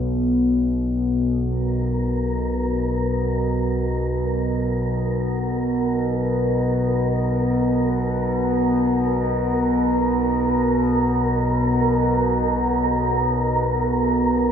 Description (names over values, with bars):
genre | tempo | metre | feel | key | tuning
dark ambient drone | free time | none | none | unclear | A4 = 440 Hz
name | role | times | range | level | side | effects
analog drone | drone | 0.0-14.5 s | B1 to B2 | -20 LUFS | equal | chorus
wind-like tuned noise texture | texture | 1.6-14.5 s | A#4 | -25 LUFS | right 2 dB | built-in reverb
room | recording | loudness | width
wet spring reverb, RT60 2.5 s | none | -19 LUFS | side -8 dB against mid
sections
0.0-14.5 A section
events
none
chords
none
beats
free time